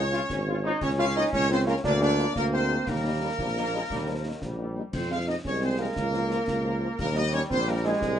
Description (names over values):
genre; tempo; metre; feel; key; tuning
military-style march for wind band; 116 BPM (dotted quarters); 6/8; straight; unclear; A4 = 436 Hz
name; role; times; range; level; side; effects
warm trumpet section; melody; 0.0-8.2 s; Ab4 to F5; -31 LUFS; left 2 dB; none
warm euphonium; second line; 0.0-8.2 s; Ab3 to F4; -30 LUFS; right 3 dB; none
mellow trombone section; sustained chords; 0.0-8.2 s; Eb3 to F4; -33 LUFS; equal; none
warm tuba; bass; 0.0-8.2 s; Ab1 to F2; -29 LUFS; right 1 dB; none
mellow French horn section; accompaniment; 0.1-7.9 s; F3 to F4; -34 LUFS; left 4 dB; none
concert snare drum, concert bass drum and clash cymbals; drums; 0.1-8.2 s; none; -37 LUFS; left 1 dB; none
room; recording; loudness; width
light reverb; nothing above 10.3 kHz; -24 LUFS; side -9 dB against mid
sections
0.0-8.2 A section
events
none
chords
0.0 Db; 0.8 Bbm/Db; 1.8 Bb7/D; 2.9 Eb; 4.9 Fm; 6.0 Bbm/Db; 7.0 Eb